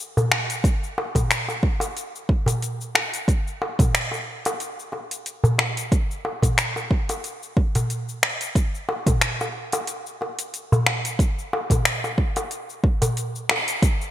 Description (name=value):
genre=downtempo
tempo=91 BPM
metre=4/4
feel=swing 55% on 16ths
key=none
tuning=none
part: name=deep house drum kit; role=drums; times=0.2-14.1 s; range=cabasa, finger snaps, hi-hat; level=-24 LUFS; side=left 2 dB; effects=overdrive, gated reverb
part: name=darbuka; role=percussion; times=0.2-13.7 s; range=none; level=-25 LUFS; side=equal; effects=none
part: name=electronic kick drum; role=drums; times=0.6-14.0 s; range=none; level=-20 LUFS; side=equal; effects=overdrive
room=light reverb, digital ambience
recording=bright 1980s-style digital production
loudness=-21 LUFS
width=side -12 dB against mid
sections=0.0-13.8 A section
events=band accent 13.5-13.8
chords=none